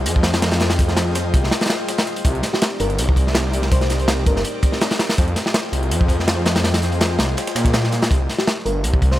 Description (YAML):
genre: drum and bass, jungle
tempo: 164 BPM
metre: 4/4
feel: straight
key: C minor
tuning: A4 = 440 Hz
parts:
  - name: airy breathy pad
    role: sustained chords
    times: 0.0-8.1 s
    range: C4 to G5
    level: -27 LUFS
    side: left 2 dB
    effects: chorus
  - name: detuned saw bass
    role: bass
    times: 0.0-9.2 s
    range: G1 to Bb2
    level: -20 LUFS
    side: equal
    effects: none
  - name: breakbeat sampler-style drum kit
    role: drums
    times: 0.1-8.1 s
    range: hi-hat, snare drum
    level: -31 LUFS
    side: right 2 dB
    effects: high-pass filter on hats, high-pass filter on snare
  - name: crunchy breakbeat drum kit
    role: drums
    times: 0.1-9.2 s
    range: hi-hat, kick drum, snare drum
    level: -18 LUFS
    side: equal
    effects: none
  - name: bell-like FM electric piano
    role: melody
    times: 2.5-4.4, 8.4-9.2 s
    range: G4 to C5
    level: -27 LUFS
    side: left 1 dB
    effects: chorus, cassette tape, dub echo
room: studio ambience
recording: none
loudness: -16 LUFS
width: side -14 dB against mid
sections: 0.0-8.1 A section; 8.1-9.2 A section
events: drop 0.0-8.1, 8.1-9.2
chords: 0.0 Fm9; 2.3 Cm9; 5.2 Fm9; 8.1 C5